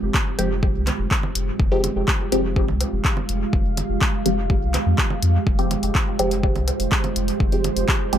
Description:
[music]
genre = dub techno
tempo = 124 BPM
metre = 4/4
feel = straight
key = F minor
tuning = A4 = 440 Hz
[part]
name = deep dark ambient pad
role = sustained chords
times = 0.0-8.2 s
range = Ab3 to F5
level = -27 LUFS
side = right 4 dB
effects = chorus, built-in reverb, sidechain pumping
[part]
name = soft dub sub bass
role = bass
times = 0.0-8.2 s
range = F1 to F2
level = -24 LUFS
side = equal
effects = sidechain pumping
[part]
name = deep house drum kit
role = drums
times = 0.1-8.2 s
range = handclaps, hi-hat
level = -26 LUFS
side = equal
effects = dub echo
[part]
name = electronic kick drum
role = drums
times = 0.1-8.0 s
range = none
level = -21 LUFS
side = equal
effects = none
[part]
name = filtered dub chord stab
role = stabs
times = 0.4-8.2 s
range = F3 to G4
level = -25 LUFS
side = equal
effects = phaser, sidechain pumping, dub echo
[part]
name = congas and woodblock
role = percussion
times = 0.9-7.7 s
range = none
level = -33 LUFS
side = right 5 dB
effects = overdrive, sidechain pumping on perc, dub echo
[sound]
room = light reverb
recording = none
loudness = -18 LUFS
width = side -10 dB against mid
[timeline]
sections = 0.0-8.2 A section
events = none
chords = 0.0 Fmadd9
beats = 0.14 0.63 1.11 | 1.60 2.08 2.56 3.05 | 3.53 4.01 4.50 4.98 | 5.47 5.95 6.43 6.92 | 7.40 7.89

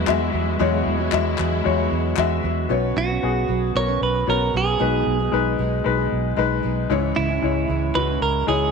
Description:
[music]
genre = piano-driven pop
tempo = 114 BPM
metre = 4/4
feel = straight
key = B major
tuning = A4 = 440 Hz
[part]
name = clear concert grand piano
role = accompaniment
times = 0.0-8.7 s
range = G#2 to E5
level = -23 LUFS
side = left 11 dB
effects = none
[part]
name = warm studio string section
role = sustained chords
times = 0.0-2.7 s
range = F#3 to E4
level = -30 LUFS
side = equal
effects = none
[part]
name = fingerpicked steel-string acoustic guitar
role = riff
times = 0.0-8.7 s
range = B2 to B4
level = -28 LUFS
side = right 17 dB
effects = none
[part]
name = vintage muted fingered electric bass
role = bass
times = 0.0-8.7 s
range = B1 to E2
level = -24 LUFS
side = right 2 dB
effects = none
[part]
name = group handclap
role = percussion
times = 0.1-2.3 s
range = none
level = -32 LUFS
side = left 11 dB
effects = none
[part]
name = direct-recorded clean electric guitar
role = melody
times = 3.0-8.7 s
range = E4 to C#5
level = -23 LUFS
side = right 5 dB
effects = none
[sound]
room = moderate spring reverb, RT60 2.4 s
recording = 1960s-style stereo with parts hard left and right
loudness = -19 LUFS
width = side -5 dB against mid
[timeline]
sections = 0.0-2.7 A section; 2.7-8.7 B section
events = none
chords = 0.0 Eadd9; 2.7 Bsus2; 4.8 G#m/B; 6.9 C#m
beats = 0.07 | 0.60 1.12 1.65 2.17 | 2.70 3.22 3.75 4.27 | 4.80 5.32 5.85 6.37 | 6.90 7.42 7.95 8.48

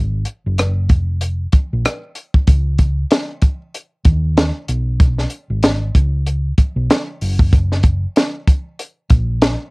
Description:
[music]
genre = lush 1970s-style soul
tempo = 95 BPM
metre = 4/4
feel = swing 58% on 16ths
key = unclear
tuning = A4 = 440 Hz
[part]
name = hollow-body short-scale fingered electric bass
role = bass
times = 0.0-9.5 s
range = E#1 to D#2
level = -18 LUFS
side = equal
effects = none
[part]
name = compact cocktail drum kit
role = drums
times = 0.3-9.6 s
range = hi-hat, kick drum, rim click, snare drum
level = -13 LUFS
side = equal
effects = cassette tape
[sound]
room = little or no reverb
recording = home recording on cassette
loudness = -14 LUFS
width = side -29 dB against mid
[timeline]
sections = 0.0-9.7 A section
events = none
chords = none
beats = 0.59 1.22 1.85 | 2.48 3.11 3.74 4.37 | 5.00 5.63 6.26 6.89 | 7.53 8.16 8.79 9.42

